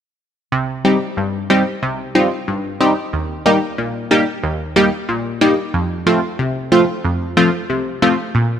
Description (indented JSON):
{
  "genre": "dancehall",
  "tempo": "92 BPM",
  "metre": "4/4",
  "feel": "straight",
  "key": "unclear",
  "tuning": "A4 = 440 Hz",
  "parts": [
    { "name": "punchy chord stab", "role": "accompaniment", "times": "0.5-8.6 s", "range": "Eb2 to G4", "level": "-15 LUFS", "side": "equal", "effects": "chorus" }
  ],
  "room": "moderate lush hall reverb, RT60 2.8 s",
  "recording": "none",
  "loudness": "-15 LUFS",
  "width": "side -8 dB against mid",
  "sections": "0.5-8.6 A section",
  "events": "none",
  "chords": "0.5 Cm; 3.1 Eb; 5.7 F",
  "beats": "| 0.52 1.17 1.82 2.48 | 3.13 3.78 4.43 5.09 | 5.74 6.39 7.04 7.70 | 8.35"
}